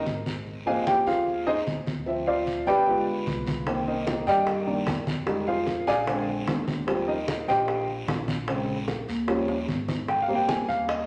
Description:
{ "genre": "Afro-Cuban jazz", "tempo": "150 BPM", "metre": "4/4", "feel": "straight", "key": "Eb major", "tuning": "A4 = 440 Hz", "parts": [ { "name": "warm upright piano", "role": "accompaniment", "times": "0.0-11.1 s", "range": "Db3 to Ab5", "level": "-27 LUFS", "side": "equal", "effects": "none" }, { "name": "upright bass", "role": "bass", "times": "0.0-11.1 s", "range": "G1 to G2", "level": "-38 LUFS", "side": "equal", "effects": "none" }, { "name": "congas", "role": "percussion", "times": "0.1-11.1 s", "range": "none", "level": "-36 LUFS", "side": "equal", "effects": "none" }, { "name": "guiro", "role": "percussion", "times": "0.1-11.1 s", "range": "none", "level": "-44 LUFS", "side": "equal", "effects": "none" }, { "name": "bongos", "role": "percussion", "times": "3.7-11.1 s", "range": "none", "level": "-37 LUFS", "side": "equal", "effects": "none" } ], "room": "wet large studio reverb, RT60 1.1 s", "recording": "none", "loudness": "-26 LUFS", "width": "mono", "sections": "0.0-10.1 A section", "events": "upright piano solo 0.0-11.1; drum fill 9.5-10.1", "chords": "0.5 Ab6; 2.1 Dm7; 2.9 G7b9; 3.7 Cm9; 5.3 Fm7; 6.1 Bb9; 6.9 Eb69; 8.5 Bbm7; 9.3 Eb7; 10.1 Abmaj9" }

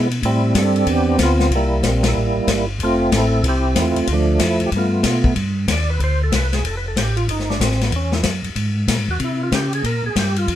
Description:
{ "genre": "soul jazz organ trio", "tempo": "187 BPM", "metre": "4/4", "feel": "swing 64% on 8ths", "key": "C major", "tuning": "A4 = 440 Hz", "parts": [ { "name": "percussive tonewheel organ", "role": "melody", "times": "0.0-10.6 s", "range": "F3 to D5", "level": "-20 LUFS", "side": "right 2 dB", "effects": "slow rotary speaker, overdrive, chorus vibrato" }, { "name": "mellow tonewheel organ", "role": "bass", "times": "0.0-10.6 s", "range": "F1 to Db3", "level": "-20 LUFS", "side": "equal", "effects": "chorus vibrato, slow rotary speaker" }, { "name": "warm soul drum kit", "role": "drums", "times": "0.1-10.6 s", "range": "hi-hat, kick drum, ride cymbal, snare drum", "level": "-22 LUFS", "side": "left 3 dB", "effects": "none" } ], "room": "light reverb", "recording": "minimal, uncompressed stereo recording", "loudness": "-16 LUFS", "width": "side -11 dB against mid", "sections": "0.0-5.4 A section; 5.4-10.6 B section", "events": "band accent 2.0; tonewheel organ solo 5.4-10.6", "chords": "0.2 Am11; 1.5 C6; 2.8 Fmaj9; 4.1 Dm; 4.7 G9; 5.4 Csus2; 6.6 Fadd9; 7.9 Eadd9; 9.2 C5" }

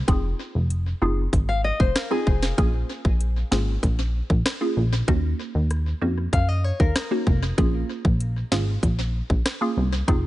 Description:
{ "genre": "dancehall", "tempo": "96 BPM", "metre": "4/4", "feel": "straight", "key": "Bb minor", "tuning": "A4 = 438 Hz", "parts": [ { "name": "plucky analog bass", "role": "bass", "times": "0.0-10.3 s", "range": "F1 to Gb2", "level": "-23 LUFS", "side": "equal", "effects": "none" }, { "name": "hollow square pluck", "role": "accompaniment", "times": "0.1-10.3 s", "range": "Bb3 to Ab4", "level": "-28 LUFS", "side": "right 1 dB", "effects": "chorus, phaser" }, { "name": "island pop drum kit", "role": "drums", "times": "0.1-10.2 s", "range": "hi-hat, kick drum, rim click, snare drum", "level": "-23 LUFS", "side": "equal", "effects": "overdrive, tape echo" }, { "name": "nylon-string guitar", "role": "arpeggios", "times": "1.5-2.6, 6.3-7.5 s", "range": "Ab4 to F5", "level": "-29 LUFS", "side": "left 4 dB", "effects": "tape echo" } ], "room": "little or no reverb", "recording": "echo-heavy mix, nothing above 10.9 kHz", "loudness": "-20 LUFS", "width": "side -16 dB against mid", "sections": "0.0-10.3 A section", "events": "none", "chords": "0.1 Fm7; 2.6 Bbm7; 5.1 Ebm7; 7.6 Bbm7" }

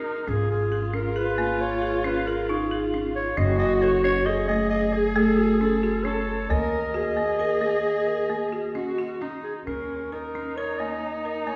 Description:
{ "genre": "contemporary instrumental, chamber music in an uneven meter", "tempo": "134 BPM", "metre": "7/4", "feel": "straight", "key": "Eb minor", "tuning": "A4 = 440 Hz", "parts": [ { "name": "growling clarinet", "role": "melody", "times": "0.0-11.6 s", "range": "Ab4 to Eb5", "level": "-30 LUFS", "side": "equal", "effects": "none" }, { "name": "dark viola", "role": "second line", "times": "0.0-11.6 s", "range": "Db4 to Bb4", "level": "-30 LUFS", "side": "equal", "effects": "none" }, { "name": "folk marimba with hard mallets", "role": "arpeggios", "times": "0.0-11.6 s", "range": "A3 to Bb4", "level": "-30 LUFS", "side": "equal", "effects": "none" }, { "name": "upright bass", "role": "bass", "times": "0.0-11.6 s", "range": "Gb1 to Eb2", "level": "-32 LUFS", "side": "equal", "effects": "none" } ], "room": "wet recital hall reverb, RT60 1.8 s", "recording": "heard from further back in the room", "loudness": "-25 LUFS", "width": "mono", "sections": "0.0-9.7 A section; 9.7-11.6 B section", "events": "none", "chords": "0.3 Absus4; 3.4 Gbmadd9; 6.5 Eb7(no3)" }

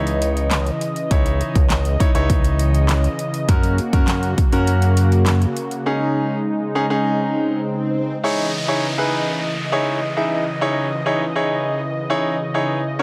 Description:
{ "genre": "dance-pop", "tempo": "101 BPM", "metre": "4/4", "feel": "straight", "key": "C# dorian", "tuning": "A4 = 439 Hz", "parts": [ { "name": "bright concert grand piano", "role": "accompaniment", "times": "0.0-13.0 s", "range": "C#4 to E5", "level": "-24 LUFS", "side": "equal", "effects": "sidechain pumping" }, { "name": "warm analog pad", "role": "sustained chords", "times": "0.0-13.0 s", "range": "C#3 to D#5", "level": "-26 LUFS", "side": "equal", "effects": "chorus, sidechain pumping" }, { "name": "chorused synth bass", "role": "bass", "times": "0.0-5.5 s", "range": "C#2 to F#2", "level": "-20 LUFS", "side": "equal", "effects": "sidechain pumping" }, { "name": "pop drum kit", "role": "drums", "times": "0.1-5.9 s", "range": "handclaps, hi-hat, kick drum, snare drum", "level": "-22 LUFS", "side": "equal", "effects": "none" }, { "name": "swell and downlifter", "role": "sound effects", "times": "7.2-13.0 s", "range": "none", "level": "-32 LUFS", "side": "equal", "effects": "none" } ], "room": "light reverb, digital ambience", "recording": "none", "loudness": "-19 LUFS", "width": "mono", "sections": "0.0-8.2 A section; 8.2-13.0 B section", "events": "break 5.9-8.2; swell 7.2-8.2", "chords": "0.0 C#madd9; 3.5 F#; 5.9 G#sus4; 8.2 C#madd9" }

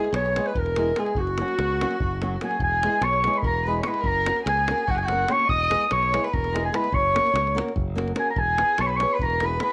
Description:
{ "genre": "balkan folk, Balkan wedding band", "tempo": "291 BPM (eighths)", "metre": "7/8", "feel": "straight", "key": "unclear", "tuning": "A4 = 440 Hz", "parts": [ { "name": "dark clarinet", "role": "melody", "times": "0.0-9.7 s", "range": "F#4 to D#6", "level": "-26 LUFS", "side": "equal", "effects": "none" }, { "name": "dark violin", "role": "second line", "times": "0.0-9.7 s", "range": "F#4 to D#5", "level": "-32 LUFS", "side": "equal", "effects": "none" }, { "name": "nylon-string guitar", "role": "accompaniment", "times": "0.0-9.7 s", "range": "F#3 to B4", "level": "-34 LUFS", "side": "equal", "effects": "none" }, { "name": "davul", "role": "percussion", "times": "0.0-9.7 s", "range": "none", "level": "-34 LUFS", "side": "equal", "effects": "none" }, { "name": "modern bright fingered electric bass", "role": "bass", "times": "0.1-9.6 s", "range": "E1 to C#2", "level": "-31 LUFS", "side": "equal", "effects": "none" } ], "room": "light reverb, small room ambience", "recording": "none", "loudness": "-23 LUFS", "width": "mono", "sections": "0.0-2.6 A section; 2.6-9.7 A section", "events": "none", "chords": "0.0 E; 1.2 F#; 2.6 E; 4.0 F#; 5.5 E; 6.9 F#; 8.4 E" }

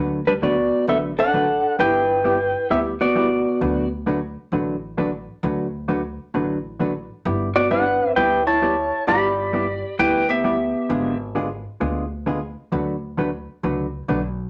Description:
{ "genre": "country, western swing", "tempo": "132 BPM", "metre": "4/4", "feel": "swing 66% on 8ths", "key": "D major", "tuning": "A4 = 440 Hz", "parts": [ { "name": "hollow-body jazz guitar", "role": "accompaniment", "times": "0.0-14.2 s", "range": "D3 to B4", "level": "-26 LUFS", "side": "equal", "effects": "none" }, { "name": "upright bass", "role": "bass", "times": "0.0-14.5 s", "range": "G1 to D2", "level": "-34 LUFS", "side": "equal", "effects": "none" }, { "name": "clean lap steel guitar", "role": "melody", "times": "0.3-3.9, 7.6-11.2 s", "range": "D4 to B5", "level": "-22 LUFS", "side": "equal", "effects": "none" }, { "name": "hollow-body jazz guitar", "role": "second line", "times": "0.3-3.9, 7.6-11.2 s", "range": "G3 to G4", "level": "-28 LUFS", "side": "equal", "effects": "none" } ], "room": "wet studio reverb, RT60 0.6 s", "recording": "none", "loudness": "-22 LUFS", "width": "mono", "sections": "0.0-14.5 A section", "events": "none", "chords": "0.0 D6; 1.8 G6; 3.6 D6; 7.3 G6; 10.9 G#dim7; 12.7 D6" }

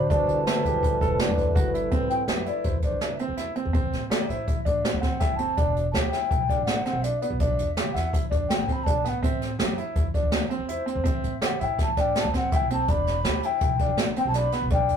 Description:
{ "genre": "progressive instrumental, band music in an uneven meter", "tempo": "164 BPM", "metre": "5/4", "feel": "straight", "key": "A dorian", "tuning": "A4 = 440 Hz", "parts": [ { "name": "breathy mellow jazz flute", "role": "melody", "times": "0.0-15.0 s", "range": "C5 to B5", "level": "-29 LUFS", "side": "left 2 dB", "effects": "none" }, { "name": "dark analog pad", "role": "accompaniment", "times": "0.0-1.9 s", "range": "G3 to B4", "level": "-28 LUFS", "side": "equal", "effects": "chorus" }, { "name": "bright concert grand piano", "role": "arpeggios", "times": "0.0-15.0 s", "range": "B3 to A4", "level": "-29 LUFS", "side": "right 2 dB", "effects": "none" }, { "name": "upright bass", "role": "bass", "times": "0.0-15.0 s", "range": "E1 to A2", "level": "-30 LUFS", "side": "equal", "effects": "none" }, { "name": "jazz brush drum kit", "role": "drums", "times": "0.1-15.0 s", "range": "hi-hat, kick drum, snare drum", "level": "-26 LUFS", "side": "equal", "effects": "none" } ], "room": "wet booth ambience, RT60 0.2 s", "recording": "rough rehearsal-room recording, tube saturation", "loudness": "-22 LUFS", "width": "side -8 dB against mid", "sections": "0.0-1.9 A section; 1.9-15.0 B section", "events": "flute solo 1.9-15.0", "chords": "0.1 G69; 1.9 Am; 5.6 Em7; 9.2 Am; 12.9 Em7" }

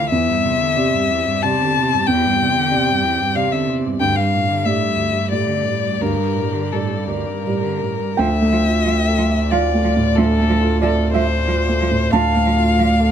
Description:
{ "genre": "neoclassical piano and strings", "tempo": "79-96 BPM", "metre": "3/4", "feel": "rubato", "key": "D minor", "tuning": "A4 = 441 Hz", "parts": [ { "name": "rich violin", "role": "melody", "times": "0.0-13.1 s", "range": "A4 to A5", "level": "-20 LUFS", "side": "left 6 dB", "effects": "none" }, { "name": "rich cello", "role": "second line", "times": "0.0-12.9 s", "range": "D2 to F3", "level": "-25 LUFS", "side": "right 6 dB", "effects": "none" }, { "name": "felt-muted upright piano", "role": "accompaniment", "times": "0.0-13.1 s", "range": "D2 to A5", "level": "-19 LUFS", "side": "right 2 dB", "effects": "none" }, { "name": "rich chamber string section", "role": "sustained chords", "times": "0.0-13.1 s", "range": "G3 to D5", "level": "-30 LUFS", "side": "left 1 dB", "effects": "none" }, { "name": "saturated sub bass", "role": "bass", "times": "8.2-13.1 s", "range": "D2", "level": "-21 LUFS", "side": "equal", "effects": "none" } ], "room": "light reverb", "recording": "none", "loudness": "-15 LUFS", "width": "side -8 dB against mid", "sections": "0.0-8.2 A section; 8.2-13.1 B section", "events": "none", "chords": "0.1 Cadd9/E; 4.0 Gsus2/D; 8.2 Dmadd9" }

